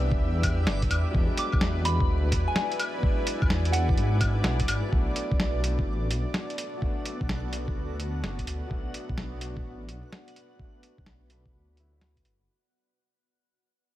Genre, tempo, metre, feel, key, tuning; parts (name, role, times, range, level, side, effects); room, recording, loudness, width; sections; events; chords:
future garage; 127 BPM; 4/4; swing 64% on 16ths; B minor; A4 = 440 Hz
warm upright piano; accompaniment; 0.0-12.5 s; E3 to E4; -37 LUFS; left 3 dB; vintage 12-bit sampler grit, sidechain pumping, low-pass filter, digital delay
granular cloud pad; sustained chords; 0.0-12.5 s; B3 to G#5; -36 LUFS; right 1 dB; built-in reverb, vintage 12-bit sampler grit, sidechain pumping
dark detuned saw bass; bass; 0.0-12.5 s; F#1 to G#2; -28 LUFS; equal; tube saturation, sidechain pumping
backwards swelling texture; texture; 0.0-12.5 s; D5 to F#5; -42 LUFS; right 3 dB; built-in reverb
electronic kick drum; drums; 0.1-12.2 s; -28 LUFS; equal; overdrive, studio reverb
lo-fi sampler-style drum kit; drums; 0.4-12.4 s; claves, hi-hat, snare drum; -31 LUFS; equal; overdrive, studio reverb
soft synth bell; melody; 1.4-4.2 s; F#5 to D6; -34 LUFS; equal; chorus, phaser, dub echo
light reverb; vinyl crackle; -24 LUFS; side -14 dB against mid
0.0-4.9 A section; 4.9-12.5 B section
fade-out 4.9-12.5
0.0 Cmaj7; 1.1 E7; 4.9 Bm7